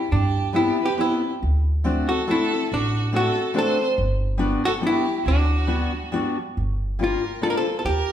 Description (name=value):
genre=musette waltz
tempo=140 BPM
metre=3/4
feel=rubato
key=G major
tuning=A4 = 440 Hz
part: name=hollow-body jazz guitar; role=melody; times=0.0-8.1 s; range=D4 to Bb4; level=-24 LUFS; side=left 1 dB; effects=none
part: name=rich violin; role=second line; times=0.0-8.1 s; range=F#4 to D5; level=-27 LUFS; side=right 4 dB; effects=none
part: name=upright bass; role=bass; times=0.1-8.1 s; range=G1 to G2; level=-23 LUFS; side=right 1 dB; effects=none
part: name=fingerpicked steel-string acoustic guitar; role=accompaniment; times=0.5-7.6 s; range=G3 to F#4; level=-26 LUFS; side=left 3 dB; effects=none
room=wet large studio reverb, RT60 1.2 s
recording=band playing live in one room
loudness=-20 LUFS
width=side -10 dB against mid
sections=0.0-6.6 A section; 6.6-8.1 B section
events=none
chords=0.0 Cmaj7; 1.4 D7; 4.0 Gmaj7; 6.6 Gm7